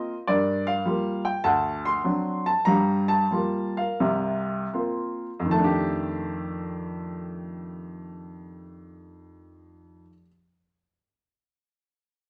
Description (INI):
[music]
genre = solo jazz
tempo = 74-105 BPM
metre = 4/4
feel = swing 69% on 8ths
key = F mixolydian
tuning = A4 = 440 Hz
[part]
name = warm baby grand piano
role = solo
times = 0.0-10.3 s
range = C2 to C6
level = -26 LUFS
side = equal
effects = none
[sound]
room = wet small room reverb, RT60 0.6 s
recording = none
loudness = -26 LUFS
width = mono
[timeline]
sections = 0.0-5.5 A section; 5.5-8.8 B section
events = slowing down 0.3-5.5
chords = 0.3 Gm7; 1.4 D7; 2.7 Gm7; 4.0 C7sus4; 5.5 F13